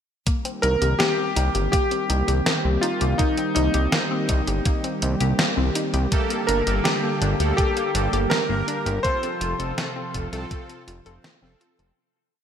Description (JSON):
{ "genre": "synthwave", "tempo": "82 BPM", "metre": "4/4", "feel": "straight", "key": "C dorian", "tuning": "A4 = 440 Hz", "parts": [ { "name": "warm analog pad", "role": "sustained chords", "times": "0.3-11.9 s", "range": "C3 to A4", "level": "-29 LUFS", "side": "right 1 dB", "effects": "chorus, sidechain pumping" }, { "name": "analog pluck", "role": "arpeggios", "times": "0.3-11.9 s", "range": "A3 to A4", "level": "-32 LUFS", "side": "left 4 dB", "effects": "chorus, ping-pong delay" }, { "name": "clean 12-bit digital drum machine", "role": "drums", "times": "0.3-11.9 s", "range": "hi-hat, snare drum", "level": "-27 LUFS", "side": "equal", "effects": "studio ambience, gated reverb" }, { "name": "electronic kick drum", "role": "drums", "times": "0.3-10.7 s", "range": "none", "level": "-24 LUFS", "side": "equal", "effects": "studio ambience" }, { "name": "clear electric grand piano", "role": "melody", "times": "0.6-11.2 s", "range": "Eb4 to C5", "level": "-25 LUFS", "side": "left 1 dB", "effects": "analog chorus, ping-pong delay" }, { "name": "fat analog bass", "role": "bass", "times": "0.6-11.9 s", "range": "F1 to D2", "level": "-23 LUFS", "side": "equal", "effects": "none" }, { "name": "analog synth brass", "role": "stabs", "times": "6.1-11.9 s", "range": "Bb3 to C5", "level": "-29 LUFS", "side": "right 2 dB", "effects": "chorus" } ], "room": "moderate plate reverb, RT60 3.4 s", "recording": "bright 1980s-style digital production", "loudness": "-20 LUFS", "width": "side -8 dB against mid", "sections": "0.3-12.0 verse", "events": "fade-out 8.1-12.0", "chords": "0.3 Cm7; 6.1 Gmadd9; 9.0 F", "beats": "| 0.27 1.00 1.73 2.46 | 3.19 3.93 4.66 5.39 | 6.12 6.85 7.58 8.32 | 9.05 9.78 10.51 11.24" }